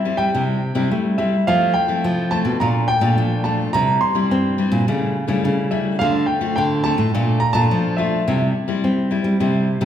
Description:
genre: samba and choro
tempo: 106 BPM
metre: 4/4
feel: straight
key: unclear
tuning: A4 = 440 Hz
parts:
  - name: warm concert grand piano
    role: melody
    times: 0.0-9.8 s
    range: E5 to C6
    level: -21 LUFS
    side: right 1 dB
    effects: none
  - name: nylon-string guitar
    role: accompaniment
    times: 0.0-9.8 s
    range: G2 to F4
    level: -21 LUFS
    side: left 3 dB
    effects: none
  - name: nylon-string guitar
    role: bass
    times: 0.0-9.8 s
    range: A2 to C4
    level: -20 LUFS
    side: right 1 dB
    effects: none
room: wet recital hall reverb, RT60 1.6 s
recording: recorded in a church or concert hall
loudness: -16 LUFS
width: side -9 dB against mid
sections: 0.0-9.8 A section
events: none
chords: 0.0 C; 1.5 Fmaj7; 2.6 Bbmaj7; 3.7 C; 4.9 A7/C#; 6.0 Dm7; 7.1 Bbmaj7; 8.3 C

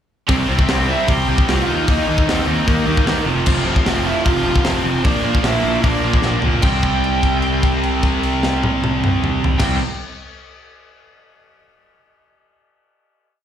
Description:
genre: punk rock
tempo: 151 BPM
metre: 4/4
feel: straight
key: unclear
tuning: A4 = 440 Hz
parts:
  - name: smooth overdriven lead guitar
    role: melody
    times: 0.3-9.8 s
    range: Bb3 to G5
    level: -23 LUFS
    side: right 1 dB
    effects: slapback echo
  - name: overdriven electric guitar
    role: riff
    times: 0.3-9.8 s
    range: F2 to Eb4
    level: -23 LUFS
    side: right 10 dB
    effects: slapback echo
  - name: scooped high-gain guitar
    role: riff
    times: 0.3-9.8 s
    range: F2 to E4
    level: -25 LUFS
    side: right 2 dB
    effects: distortion, slapback echo
  - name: tight distorted guitar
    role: riff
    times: 0.3-9.8 s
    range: F2 to Eb4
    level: -24 LUFS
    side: left 14 dB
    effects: distortion, slapback echo
  - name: fuzz picked electric bass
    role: bass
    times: 0.3-9.8 s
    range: F1 to Eb2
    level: -22 LUFS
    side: left 1 dB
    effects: overdrive
  - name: tight metal drum kit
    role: drums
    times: 0.3-9.7 s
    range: crash cymbal, hi-hat, kick drum, snare drum, toms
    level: -20 LUFS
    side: equal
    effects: none
room: little or no reverb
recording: live gig heard through the venue's PA, club reverb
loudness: -15 LUFS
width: side -9 dB against mid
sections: 0.3-6.6 riff; 6.6-9.8 final chord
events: drum fill 6.2-6.6; held note 6.6-9.6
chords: 0.3 C; 1.7 Eb; 3.3 F; 5.0 Bb; 6.6 C

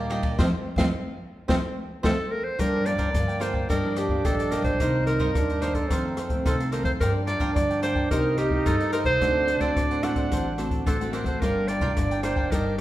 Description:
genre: samba and choro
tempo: 109 BPM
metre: 4/4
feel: straight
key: G minor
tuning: A4 = 439 Hz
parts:
  - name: breathy trombone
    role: second line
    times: 0.0-12.8 s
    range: Bb3 to Eb4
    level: -30 LUFS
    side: right 2 dB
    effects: none
  - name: cavaquinho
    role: accompaniment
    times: 0.0-12.8 s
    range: D4 to G5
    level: -34 LUFS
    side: right 2 dB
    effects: none
  - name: nylon-string guitar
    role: accompaniment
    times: 0.0-12.8 s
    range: F2 to Bb4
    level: -32 LUFS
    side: left 2 dB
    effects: none
  - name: upright bass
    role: bass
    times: 0.0-12.8 s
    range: G1 to G2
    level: -30 LUFS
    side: equal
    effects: none
  - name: open jazz drum kit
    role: drums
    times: 0.1-12.8 s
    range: hi-hat, kick drum, ride cymbal, rim click, snare drum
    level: -28 LUFS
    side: equal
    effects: none
  - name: breathy clarinet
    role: melody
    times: 2.0-12.8 s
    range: G4 to F#5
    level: -27 LUFS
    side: right 1 dB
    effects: none
room: wet recital hall reverb, RT60 1.5 s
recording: recorded in a church or concert hall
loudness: -22 LUFS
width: side -14 dB against mid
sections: 0.0-2.6 A section; 2.6-12.8 B section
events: trombone solo 0.0-2.6; band accent 0.4-2.6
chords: 0.4 F7; 2.6 Gm7; 3.7 Ebmaj9/G; 4.8 Cm9; 5.9 F7; 7.0 Gm7; 8.1 Cm7; 9.2 D7; 11.4 Gm7

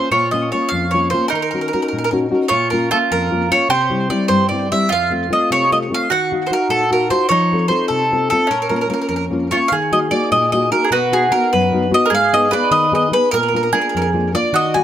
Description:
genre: italian folk, Italian serenade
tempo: 100 BPM (dotted quarters)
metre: 6/8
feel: straight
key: Bb harmonic minor, Eb harmonic minor from 9.7 s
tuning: A4 = 439 Hz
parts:
  - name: mandolin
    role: melody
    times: 0.0-14.8 s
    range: Ab4 to Ab5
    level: -17 LUFS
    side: right 1 dB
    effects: plate reverb, tape echo
  - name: nylon-string guitar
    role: accompaniment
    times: 0.0-14.8 s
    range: F2 to F5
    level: -19 LUFS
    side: left 3 dB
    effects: none
  - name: mandolin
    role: second line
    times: 0.1-14.8 s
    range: Db4 to Cb5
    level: -21 LUFS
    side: right 4 dB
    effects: none
room: moderate small room reverb, RT60 0.5 s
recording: none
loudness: -14 LUFS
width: side -10 dB against mid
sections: 0.1-9.7 A section; 9.7-14.8 B section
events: none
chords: 0.1 Bbm; 1.3 Ebm7; 2.5 Bbm; 3.7 C; 4.9 F; 6.1 Ebmadd9; 7.3 F; 8.5 Bbm; 9.7 Ebm; 10.9 B; 12.1 Abm; 13.3 Bb

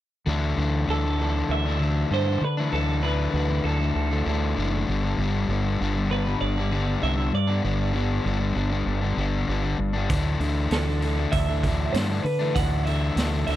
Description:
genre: indie rock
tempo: 98 BPM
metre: 4/4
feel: straight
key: unclear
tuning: A4 = 440 Hz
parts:
  - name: crunchy overdriven guitar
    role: riff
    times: 0.3-13.6 s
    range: G2 to D4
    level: -26 LUFS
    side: left 4 dB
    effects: none
  - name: growling fingered electric bass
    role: bass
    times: 0.3-13.6 s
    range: F#1 to D3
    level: -25 LUFS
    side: right 1 dB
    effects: overdrive
  - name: twelve-string electric guitar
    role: melody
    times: 0.9-13.6 s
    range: A4 to F#5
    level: -31 LUFS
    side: right 4 dB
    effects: lush chorus
  - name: raw garage drum kit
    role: drums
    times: 10.1-13.6 s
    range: hi-hat, kick drum, snare drum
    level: -28 LUFS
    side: right 1 dB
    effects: none
room: small room ambience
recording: dry, close 1970s-style studio recording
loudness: -22 LUFS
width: side -13 dB against mid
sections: 0.3-13.6 A section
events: none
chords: 0.3 Dsus2; 4.9 G; 10.1 Dsus2

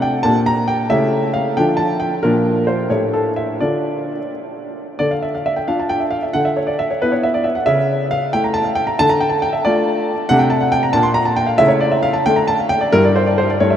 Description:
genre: classical-period piano sonatina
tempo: 90 BPM (dotted quarters)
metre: 6/8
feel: rubato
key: D minor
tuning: A4 = 439 Hz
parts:
  - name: clear grand piano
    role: solo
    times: 0.0-13.8 s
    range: G2 to C6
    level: -14 LUFS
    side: equal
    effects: none
room: wet huge ambient reverb, RT60 7.3 s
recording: in a vast, echoing space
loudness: -14 LUFS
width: side -9 dB against mid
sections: 0.0-5.0 A section; 5.0-13.8 B section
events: none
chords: 0.3 Gm/Bb; 0.9 A7/C#; 1.6 Dm; 2.2 Bb; 2.9 A5; 3.6 Dm; 6.3 E5/D; 7.7 A/C#; 9.0 Dm; 10.3 D5/C; 10.9 Bbmaj13; 11.6 A/C#; 12.3 D5; 12.9 Gm6

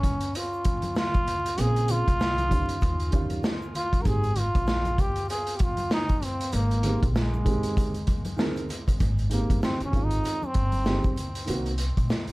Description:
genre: hip hop, jazz-hop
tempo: 97 BPM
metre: 4/4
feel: swing 59% on 16ths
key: Ab major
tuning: A4 = 440 Hz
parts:
  - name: trombone with metal mute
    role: melody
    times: 0.0-11.4 s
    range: Ab3 to Bb4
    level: -30 LUFS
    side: equal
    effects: tape echo
  - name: dark concert grand piano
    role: accompaniment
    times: 0.0-11.7 s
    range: Db3 to Bb4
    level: -31 LUFS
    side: right 2 dB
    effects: none
  - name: upright bass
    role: bass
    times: 0.0-12.3 s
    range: G1 to Eb2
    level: -27 LUFS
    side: equal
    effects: none
  - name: vintage drum kit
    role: drums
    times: 0.0-12.3 s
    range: hi-hat, kick drum, snare drum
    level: -27 LUFS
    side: equal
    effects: none
  - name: congas and egg shaker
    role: percussion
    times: 0.0-12.3 s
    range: none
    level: -40 LUFS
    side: equal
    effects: none
room: little or no reverb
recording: dark, warm production, vinyl crackle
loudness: -23 LUFS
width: side -22 dB against mid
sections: 0.0-9.0 A section; 9.0-12.3 B section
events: trombone solo 9.0-12.3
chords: 0.0 Gbmaj7sus2 (rootless); 1.6 Bbm9; 2.8 Eb9; 4.1 Abmaj7; 11.5 Cm7b5

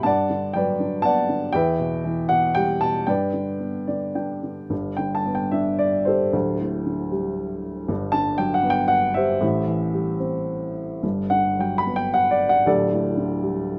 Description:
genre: classical, lyrical solo piano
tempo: 105-122 BPM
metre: 3/4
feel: rubato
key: G major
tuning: A4 = 440 Hz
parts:
  - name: dark upright piano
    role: solo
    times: 0.0-13.8 s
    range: D1 to B5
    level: -23 LUFS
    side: equal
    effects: none
room: light reverb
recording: none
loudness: -23 LUFS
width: mono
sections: 0.0-4.7 A section; 4.7-13.8 B section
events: upright piano fill 3.6-4.7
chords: 0.1 Gmaj7; 1.5 Em; 3.1 G; 6.3 D7sus4; 7.9 Gmaj7; 9.4 Am7; 11.0 Gmaj7; 12.7 Dsus4

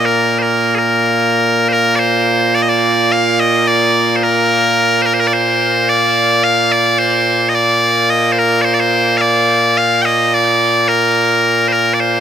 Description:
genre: scottish traditional, Scottish pipe music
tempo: 72 BPM (dotted quarters)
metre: 6/8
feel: straight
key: Bb major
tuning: A4 = 439 Hz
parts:
  - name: loud bright bagpipes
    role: solo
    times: 0.0-12.2 s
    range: Bb2 to G5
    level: -11 LUFS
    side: equal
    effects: tape echo
room: moderate huge ambient reverb, RT60 7.7 s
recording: none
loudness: -11 LUFS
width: side -9 dB against mid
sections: 0.0-1.7 A section; 1.7-12.2 B section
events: none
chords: none

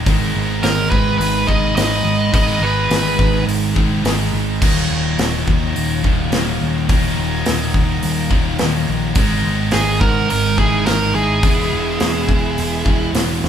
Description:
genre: hard rock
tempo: 106 BPM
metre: 4/4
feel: straight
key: unclear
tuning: A4 = 439 Hz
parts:
  - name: distorted electric guitar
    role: riff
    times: 0.0-13.5 s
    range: Eb2 to E4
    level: -24 LUFS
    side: equal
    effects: overdrive
  - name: overdriven semi-hollow guitar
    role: riff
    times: 0.0-13.5 s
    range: Eb2 to Ab3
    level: -26 LUFS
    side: left 8 dB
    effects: none
  - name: sludgy distorted guitar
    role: riff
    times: 0.0-13.5 s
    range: Eb2 to Ab3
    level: -23 LUFS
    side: right 3 dB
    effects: overdrive
  - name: picked electric bass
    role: bass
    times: 0.0-13.5 s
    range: Eb1 to Ab2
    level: -22 LUFS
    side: right 1 dB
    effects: none
  - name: big rock drum kit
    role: drums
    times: 0.1-13.5 s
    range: crash cymbal, hi-hat, kick drum, snare drum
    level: -19 LUFS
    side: equal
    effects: none
  - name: nasal lead guitar with a parked wah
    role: melody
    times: 0.6-3.4, 9.7-13.1 s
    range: Ab4 to Eb5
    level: -20 LUFS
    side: right 1 dB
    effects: overdrive
  - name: octave-fuzz lead guitar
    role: second line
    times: 0.6-3.4, 9.7-13.1 s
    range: Eb4 to Cb5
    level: -26 LUFS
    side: right 1 dB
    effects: distortion
room: light reverb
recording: band playing live in one room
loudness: -14 LUFS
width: side -9 dB against mid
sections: 0.0-13.5 A section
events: none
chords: 0.1 Abm; 4.6 Ebm; 9.2 Abm; 11.4 E

